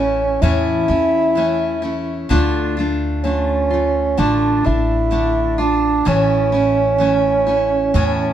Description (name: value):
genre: folk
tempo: 64 BPM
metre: 4/4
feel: straight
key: D harmonic minor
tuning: A4 = 440 Hz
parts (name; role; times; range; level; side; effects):
- dark bassoon; melody; 0.0-8.3 s; C#4 to E4; -17 LUFS; right 2 dB; none
- picked steel-string acoustic guitar; accompaniment; 0.0-8.3 s; A2 to F4; -21 LUFS; left 2 dB; none
- upright bass; bass; 0.0-8.3 s; A1 to E2; -22 LUFS; equal; none
room: light reverb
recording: minimal, uncompressed stereo recording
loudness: -15 LUFS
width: side -10 dB against mid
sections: 0.0-8.3 A section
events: none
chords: 0.0 A; 2.3 Dm; 6.1 A